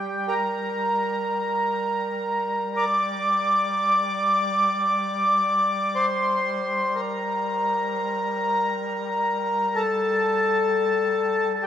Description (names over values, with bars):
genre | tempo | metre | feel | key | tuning
caucasian folk, Caucasian lament | free time | none | none | G minor | A4 = 440 Hz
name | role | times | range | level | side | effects
mellow accordion | melody | 0.0-11.7 s | G4 to D5 | -22 LUFS | equal | none
warm duduk | drone | 0.0-11.7 s | G3 | -33 LUFS | left 2 dB | none
room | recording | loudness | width
moderate cathedral reverb, RT60 7.0 s | minimal, uncompressed stereo recording | -21 LUFS | side -10 dB against mid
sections
0.0-11.7 A section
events
none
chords
none